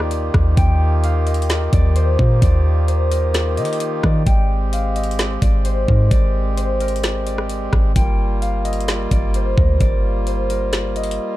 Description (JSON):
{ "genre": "hip hop, atmospheric cloud-rap", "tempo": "130 BPM", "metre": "4/4", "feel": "half-time", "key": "Eb major", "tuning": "A4 = 441 Hz", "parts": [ { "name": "concert harp", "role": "melody", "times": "0.0-11.4 s", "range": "Bb4 to G5", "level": "-25 LUFS", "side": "left 2 dB", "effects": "low-pass filter, digital delay" }, { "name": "hand-pumped harmonium", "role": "sustained chords", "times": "0.0-11.4 s", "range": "Eb3 to G4", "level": "-25 LUFS", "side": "right 1 dB", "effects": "sidechain pumping" }, { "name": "warm 808-style bass", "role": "bass", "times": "0.0-11.2 s", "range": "G1 to Eb3", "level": "-18 LUFS", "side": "equal", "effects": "none" }, { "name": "trap drum kit", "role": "drums", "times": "0.0-11.2 s", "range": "hi-hat, kick drum, rim click, snare drum", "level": "-19 LUFS", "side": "equal", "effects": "none" } ], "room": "small room ambience", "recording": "dark, warm production", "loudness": "-15 LUFS", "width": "side -16 dB against mid", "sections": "0.0-11.4 A section", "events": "drums muted 11.2", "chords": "0.0 Ebmaj7; 4.3 Abmaj9#11; 8.0 Gm7" }